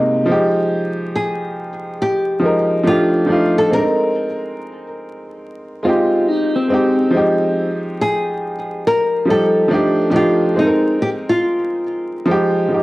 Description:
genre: hip hop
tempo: 70 BPM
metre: 4/4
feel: swing 65% on 16ths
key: F dorian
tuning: A4 = 439 Hz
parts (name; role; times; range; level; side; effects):
- bright upright piano; accompaniment; 0.0-12.8 s; C3 to Bb4; -17 LUFS; equal; cassette tape, plate reverb
- nylon-string guitar; melody; 1.2-12.8 s; Eb4 to Bb4; -18 LUFS; equal; cassette tape, plate reverb
- electric guitar through a small old amp; second line; 5.9-7.1 s; C4 to F4; -18 LUFS; left 1 dB; cassette tape, plate reverb, tape echo
room: moderate studio reverb, RT60 0.5 s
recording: home recording on cassette, vinyl crackle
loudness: -14 LUFS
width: side -19 dB against mid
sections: 0.0-12.8 A section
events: none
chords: 0.3 Fm9; 2.9 F13; 3.7 Bb9sus4; 7.1 Fm9; 9.7 F13; 10.6 Bb9sus4; 12.3 Fm9

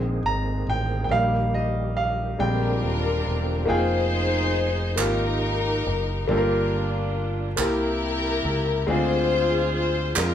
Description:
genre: slow gospel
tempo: 46 BPM (dotted quarters)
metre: 6/8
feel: straight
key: unclear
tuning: A4 = 438 Hz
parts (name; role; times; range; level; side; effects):
- clear grand piano; accompaniment; 0.0-10.3 s; G2 to Bb5; -26 LUFS; equal; none
- bright tonewheel organ; sustained chords; 0.0-3.7 s; D3 to Ab4; -33 LUFS; right 4 dB; slow rotary speaker, chorus vibrato
- fingered electric bass; bass; 0.0-10.3 s; Eb1 to F2; -26 LUFS; equal; none
- warm chamber string section; melody; 2.4-10.3 s; D4 to C5; -25 LUFS; left 3 dB; none
- group handclap; percussion; 5.0-10.3 s; none; -26 LUFS; right 5 dB; none
room: moderate large studio reverb, RT60 0.8 s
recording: band playing live in one room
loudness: -21 LUFS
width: side -9 dB against mid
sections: 0.0-3.7 A section; 3.7-10.3 B section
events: grand piano solo 0.0-3.7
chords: 0.0 Bb9sus4; 1.1 Eb/Bb; 2.4 Bb13; 3.7 Fm11; 6.3 Gm7; 7.6 C7; 8.9 Dm7b5

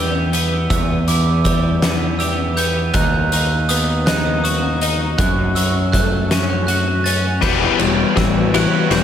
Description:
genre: post-rock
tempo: 54 BPM (dotted quarters)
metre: 6/8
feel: straight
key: E dorian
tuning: A4 = 439 Hz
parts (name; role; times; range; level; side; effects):
- glockenspiel with hard plastic mallets; arpeggios; 0.0-9.0 s; D6 to A6; -24 LUFS; right 5 dB; digital delay
- twelve-string electric guitar; arpeggios; 0.0-9.0 s; E2 to G4; -22 LUFS; left 2 dB; ensemble chorus, digital delay
- growling picked electric bass; bass; 0.0-9.0 s; E1 to F#2; -20 LUFS; equal; overdrive
- oversized low-tuned drum kit; drums; 0.3-9.0 s; crash cymbal, hi-hat, kick drum, ride cymbal, snare drum; -20 LUFS; equal; none
- clear studio string section; sustained chords; 7.4-9.0 s; G3 to B4; -25 LUFS; right 2 dB; none
- distorted electric guitar; riff; 7.4-9.0 s; E3 to B3; -17 LUFS; left 9 dB; overdrive
room: light reverb, studio reverb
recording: none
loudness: -14 LUFS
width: side -9 dB against mid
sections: 0.0-7.4 A section; 7.4-9.0 B section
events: build-up 7.4-9.0; drum fill 7.4-9.0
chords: 0.0 Em; 2.9 B/D#; 5.2 F#m; 7.4 Emadd9

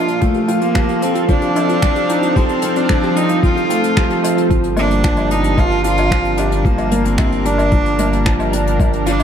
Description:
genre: piano and strings electronica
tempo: 112 BPM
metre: 4/4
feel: straight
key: G minor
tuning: A4 = 440 Hz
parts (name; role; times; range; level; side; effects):
- bright cello; melody; 0.0-9.2 s; A3 to F4; -19 LUFS; right 1 dB; digital delay
- lush unison pad; sustained chords; 0.0-9.2 s; Bb2 to F5; -23 LUFS; right 1 dB; chorus, sidechain pumping
- warm concert grand piano; riff; 0.0-9.2 s; F3 to A4; -18 LUFS; equal; digital delay
- round analog bass; bass; 0.0-9.2 s; G1 to Bb1; -20 LUFS; equal; sidechain pumping, high-pass filter
- soft round pluck; arpeggios; 0.1-4.4 s; D4 to G5; -26 LUFS; right 1 dB; none
- soft brush drum kit; drums; 0.1-9.2 s; finger snaps, hi-hat, woodblock; -26 LUFS; left 1 dB; high-pass filter on hats, high-pass filter on snare, high-pass filter on perc, high-pass filter on room
- electronic kick drum; drums; 0.2-8.9 s; none; -16 LUFS; equal; none
room: moderate lush hall reverb, RT60 1.8 s, small room ambience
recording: dark, warm production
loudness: -13 LUFS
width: side -8 dB against mid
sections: 0.0-4.5 A section; 4.5-9.2 B section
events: build-up 0.0-4.5; drop 4.5-9.2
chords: 0.2 F7; 4.5 Gm7

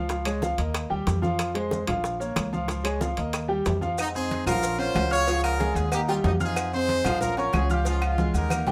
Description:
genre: latin, salsa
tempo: 186 BPM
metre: 4/4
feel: straight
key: unclear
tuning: A4 = 440 Hz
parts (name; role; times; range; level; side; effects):
- warm concert grand piano; accompaniment; 0.0-8.7 s; F3 to F6; -30 LUFS; equal; none
- upright bass; bass; 0.0-8.7 s; Bb1 to F2; -31 LUFS; equal; none
- bongos and cowbell; percussion; 0.1-8.7 s; none; -38 LUFS; equal; none
- congas; percussion; 0.1-8.7 s; none; -35 LUFS; equal; none
- maracas; percussion; 0.1-8.7 s; none; -44 LUFS; equal; none
- timbales and agogo bells; percussion; 0.1-8.7 s; none; -36 LUFS; equal; none
- claves; percussion; 0.3-8.7 s; none; -40 LUFS; equal; none
- brilliant horn section; melody; 4.0-8.7 s; Ab3 to Db5; -31 LUFS; equal; none
room: moderate studio reverb, RT60 0.5 s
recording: none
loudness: -26 LUFS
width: mono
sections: 0.0-4.0 A section; 4.0-8.7 B section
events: drum fill 8.2-8.7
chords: 0.1 Db; 0.8 Eb; 1.4 Fm; 2.0 Bbm; 2.7 Db; 3.3 Eb; 4.0 Fm7; 4.6 Bbm; 5.3 Db; 5.9 Eb; 6.6 Fm7; 7.2 Bbm; 7.9 Db

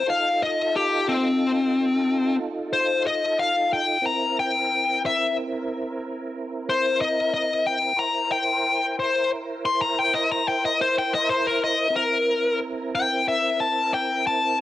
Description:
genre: blues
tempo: 61 BPM (dotted quarters)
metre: 12/8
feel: straight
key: C mixolydian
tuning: A4 = 441 Hz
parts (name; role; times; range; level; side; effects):
- smooth overdriven lead guitar; melody; 0.0-14.6 s; C4 to C6; -21 LUFS; left 3 dB; cassette tape
- tonewheel organ; sustained chords; 0.0-14.6 s; C4 to C5; -29 LUFS; right 3 dB; chorus vibrato, slow rotary speaker, cassette tape
room: light reverb, digital ambience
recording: home recording on cassette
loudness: -21 LUFS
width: side -14 dB against mid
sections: 0.0-14.6 A section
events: lead electric guitar solo 0.0-14.6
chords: 0.1 F7; 4.0 C7

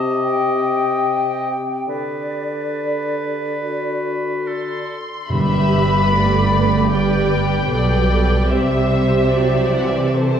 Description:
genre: classical, slow romantic movement for symphony orchestra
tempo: 66-78 BPM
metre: 4/4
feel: rubato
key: G major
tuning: A4 = 440 Hz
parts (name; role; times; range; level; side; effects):
- clear oboe; second line; 0.0-5.0 s; A4 to Eb5; -26 LUFS; right 1 dB; none
- mellow clarinet; second line; 0.0-4.9 s; F#4 to G4; -26 LUFS; left 7 dB; none
- dark bassoon; accompaniment; 0.0-4.9 s; C3 to D3; -26 LUFS; right 1 dB; none
- hollow small flute group; second line; 0.2-4.8 s; D5 to G5; -24 LUFS; left 3 dB; none
- muted studio violin section; melody; 4.5-10.4 s; D5 to C6; -23 LUFS; left 3 dB; none
- muted studio violin section; second line; 5.3-10.4 s; B4 to E5; -23 LUFS; left 2 dB; none
- muted studio viola section; accompaniment; 5.3-10.4 s; E3 to A4; -21 LUFS; right 3 dB; none
- muted studio cello section; bass; 5.3-10.4 s; G2 to C3; -20 LUFS; right 2 dB; none
- muted studio double bass section; bass; 5.3-10.4 s; G1 to C2; -21 LUFS; right 2 dB; none
- timpani; percussion; 5.3-6.5 s; G2; -22 LUFS; equal; none
room: wet scoring stage reverb, RT60 2.0 s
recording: heard from further back in the room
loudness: -16 LUFS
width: side -8 dB against mid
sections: 0.0-5.3 A section; 5.3-10.4 B section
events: none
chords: 0.0 Cm; 1.9 G/D; 5.3 G; 8.5 C

